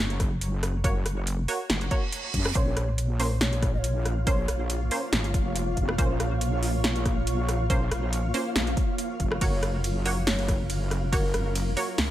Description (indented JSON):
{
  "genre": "deep dubstep",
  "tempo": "140 BPM",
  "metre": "4/4",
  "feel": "swing 54% on 16ths, half-time",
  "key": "Bb minor",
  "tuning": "A4 = 440 Hz",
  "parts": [
    { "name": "wobble bass", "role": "bass", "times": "0.0-12.1 s", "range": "F1 to Gb2", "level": "-27 LUFS", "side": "equal", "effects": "chorus" },
    { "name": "deep house drum kit", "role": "drums", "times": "0.1-12.1 s", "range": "hi-hat, ride cymbal, rim click, snare drum", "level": "-30 LUFS", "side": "equal", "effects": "overdrive, studio reverb" },
    { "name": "electronic kick drum", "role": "drums", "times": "0.2-11.2 s", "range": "none", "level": "-27 LUFS", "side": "equal", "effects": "overdrive, studio reverb" },
    { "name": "filtered dub chord stab", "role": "stabs", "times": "0.8-11.9 s", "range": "Bb3 to Db5", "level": "-34 LUFS", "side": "right 2 dB", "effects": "chorus, cassette tape, dub echo" },
    { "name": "reverse cymbal", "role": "sound effects", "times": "1.9-2.6 s", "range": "none", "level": "-34 LUFS", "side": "right 6 dB", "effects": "none" },
    { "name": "breathy mellow low ney", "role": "melody", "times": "2.6-4.6, 9.4-11.6 s", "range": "Bb4 to Eb5", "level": "-36 LUFS", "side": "equal", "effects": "dub echo" },
    { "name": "granular cloud pad", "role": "sustained chords", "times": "3.8-12.1 s", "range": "Gb3 to Db5", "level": "-35 LUFS", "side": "right 1 dB", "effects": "built-in reverb" },
    { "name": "flickering grainy texture", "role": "texture", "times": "3.7-12.1 s", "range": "F4 to F5", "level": "-36 LUFS", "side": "left 2 dB", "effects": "built-in reverb" }
  ],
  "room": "digital ambience",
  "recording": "none",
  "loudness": "-24 LUFS",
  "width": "side -13 dB against mid",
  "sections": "0.0-12.1 A section",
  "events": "reverse cymbal 1.9-2.6",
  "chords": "0.0 Gb; 2.6 Bbmadd9; 9.4 Gb"
}